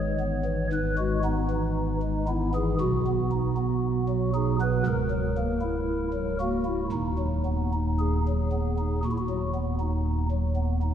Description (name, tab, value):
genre	classical, chorale-style piece for pipe organ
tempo	58 BPM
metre	4/4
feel	rubato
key	unclear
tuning	A4 = 439 Hz
part	pipe organ, stopped flute	solo	0.0-10.9 s	C#1 to C#5	-24 LUFS	equal	none
room	wet church reverb, RT60 3.1 s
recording	recorded in a church or concert hall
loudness	-24 LUFS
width	side -9 dB against mid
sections	0.0-10.9 A section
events	none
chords	0.0 E/G#; 2.8 B; 4.9 F#7/C#; 6.9 B/D#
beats	0.71 1.75 | 2.79 3.83 4.86 5.89 | 6.92 8.00 9.04 10.06